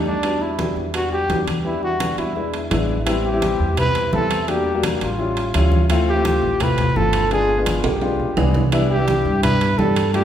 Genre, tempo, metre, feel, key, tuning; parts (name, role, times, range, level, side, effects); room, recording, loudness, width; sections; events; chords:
Afro-Cuban jazz; 170 BPM; 4/4; straight; E minor, A minor from 3.1 s; A4 = 440 Hz
breathy trumpet; melody; 0.0-10.2 s; D4 to B4; -22 LUFS; right 1 dB
warm baby grand piano; accompaniment; 0.0-10.2 s; G3 to Ab4; -23 LUFS; left 3 dB
upright bass; bass; 0.0-10.2 s; G1 to G2; -23 LUFS; right 1 dB
congas; percussion; 0.1-10.2 s; -26 LUFS; equal
claves; percussion; 0.2-10.1 s; -36 LUFS; right 4 dB
timbales; percussion; 0.2-10.2 s; -28 LUFS; right 4 dB
wet recital hall reverb, RT60 1.5 s; recorded in a church or concert hall; -17 LUFS; side -10 dB against mid
0.0-3.1 A section; 3.1-10.2 B section
drum fill 7.8-8.7
0.2 Em9; 2.4 E7; 3.1 Am9; 4.5 Em7b5; 5.2 A7b13; 5.9 Dm9; 7.3 G7b9; 8.7 Cmaj9